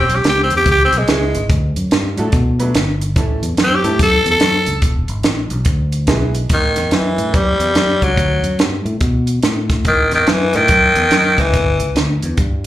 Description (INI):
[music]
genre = electric blues shuffle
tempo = 144 BPM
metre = 4/4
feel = swing 63% on 8ths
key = A mixolydian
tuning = A4 = 440 Hz
[part]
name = growling tenor saxophone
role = melody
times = 0.0-12.0 s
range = D#3 to A4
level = -14 LUFS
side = left 1 dB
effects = slapback echo
[part]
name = fingered electric bass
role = bass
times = 0.0-12.7 s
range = E1 to B2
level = -18 LUFS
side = equal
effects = none
[part]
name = compact cocktail drum kit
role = drums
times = 0.1-12.7 s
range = hi-hat, kick drum, snare drum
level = -17 LUFS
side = right 1 dB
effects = slapback echo
[part]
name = warm upright piano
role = accompaniment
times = 1.1-6.3 s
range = E3 to B4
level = -22 LUFS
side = right 3 dB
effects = slapback echo
[sound]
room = small room ambience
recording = live gig heard through the venue's PA, club reverb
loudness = -13 LUFS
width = side -13 dB against mid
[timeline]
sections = 0.0-6.5 A section; 6.5-12.7 B section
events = tenor saxophone solo 0.0-6.5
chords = 0.0 E; 1.5 D; 3.2 A; 4.8 E; 6.5 A5; 8.2 D; 9.9 A